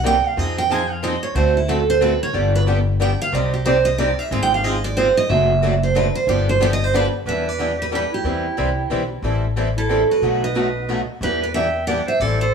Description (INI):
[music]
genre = acoustic string swing (jazz manouche)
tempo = 183 BPM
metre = 3/4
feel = swing 61% on 8ths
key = E minor from 7.3 s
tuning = A4 = 437 Hz
[part]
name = picked steel-string acoustic guitar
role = melody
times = 0.0-12.5 s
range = E4 to Ab5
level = -20 LUFS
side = right 4 dB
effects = none
[part]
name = picked swing-style acoustic guitar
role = accompaniment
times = 0.0-12.4 s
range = B2 to D5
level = -24 LUFS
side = left 3 dB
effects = none
[part]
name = upright bass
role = bass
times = 0.0-12.5 s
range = F#1 to F2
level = -22 LUFS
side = left 1 dB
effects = none
[part]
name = picked steel-string acoustic guitar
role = accompaniment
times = 0.1-12.4 s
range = B2 to D5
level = -27 LUFS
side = right 4 dB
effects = none
[part]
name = bright clarinet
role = second line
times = 7.3-12.5 s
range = E4 to E5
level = -25 LUFS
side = right 3 dB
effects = none
[sound]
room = wet studio reverb, RT60 0.9 s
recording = heard from further back in the room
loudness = -17 LUFS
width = side -6 dB against mid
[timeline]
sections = 0.0-7.3 A section; 7.3-12.5 B section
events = steel-string acoustic guitar solo 0.0-7.3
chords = 0.4 Fm7; 1.4 D7; 2.3 G; 3.3 Cmadd9; 4.3 Ab6; 5.3 D7/F#; 6.3 G7; 7.3 Em7; 8.2 Cmaj7; 9.2 Am7; 10.2 B7; 11.2 Em7